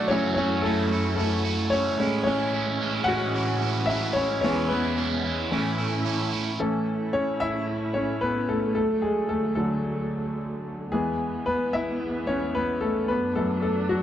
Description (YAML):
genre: pop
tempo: 111 BPM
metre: 4/4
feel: straight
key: A major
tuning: A4 = 439 Hz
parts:
  - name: clear concert grand piano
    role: accompaniment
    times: 0.0-14.0 s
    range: F#2 to F#5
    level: -25 LUFS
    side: left 1 dB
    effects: none
  - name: warm studio string section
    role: sustained chords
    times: 0.0-14.0 s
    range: D2 to E4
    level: -31 LUFS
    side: right 2 dB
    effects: none
  - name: crunchy overdriven guitar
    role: riff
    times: 0.0-6.6 s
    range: E2 to F#4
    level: -29 LUFS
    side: right 5 dB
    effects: phaser
room: moderate large studio reverb, RT60 0.8 s, small room ambience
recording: dark, warm production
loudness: -23 LUFS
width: side -11 dB against mid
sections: 0.0-6.6 A section; 6.6-14.0 B section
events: grand piano solo 0.0-6.6, 6.6-14.0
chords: 0.1 F#m7; 2.0 Amaj7; 4.4 E; 5.5 A; 8.8 D; 10.9 E; 13.1 D/F#